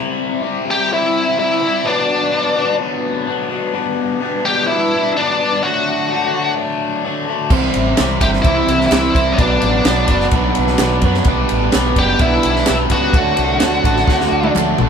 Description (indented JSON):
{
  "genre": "indie rock",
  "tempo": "127 BPM",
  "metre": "4/4",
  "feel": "straight",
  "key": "G major",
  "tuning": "A4 = 440 Hz",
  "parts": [
    { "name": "overdriven electric guitar", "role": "riff", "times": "0.0-14.9 s", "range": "B2 to E4", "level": "-19 LUFS", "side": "left 4 dB", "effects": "phaser" },
    { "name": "octave-fuzz lead guitar", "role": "melody", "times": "0.7-14.5 s", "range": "D4 to G4", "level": "-17 LUFS", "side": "left 1 dB", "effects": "distortion" },
    { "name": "overdriven electric guitar", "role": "riff", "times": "7.5-14.9 s", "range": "B2 to C5", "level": "-18 LUFS", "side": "right 6 dB", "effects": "none" },
    { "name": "growling fingered electric bass", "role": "bass", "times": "7.5-14.9 s", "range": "F#1 to F#2", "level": "-20 LUFS", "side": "equal", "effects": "overdrive" },
    { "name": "compact cocktail drum kit", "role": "drums", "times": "7.5-14.9 s", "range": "crash cymbal, kick drum, ride cymbal, snare drum, toms", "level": "-18 LUFS", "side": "equal", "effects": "none" },
    { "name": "group handclap", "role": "percussion", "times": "8.0-14.7 s", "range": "none", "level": "-27 LUFS", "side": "right 6 dB", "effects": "none" }
  ],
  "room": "moderate studio ambience, RT60 0.5 s",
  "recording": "band playing live in one room",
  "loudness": "-13 LUFS",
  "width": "side -7 dB against mid",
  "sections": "0.0-14.9 A section",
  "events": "drum fill 14.1-14.9",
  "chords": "0.0 C; 1.8 Bm; 3.7 G/B; 5.6 D; 7.5 C; 9.4 Bm; 11.3 G; 13.1 D"
}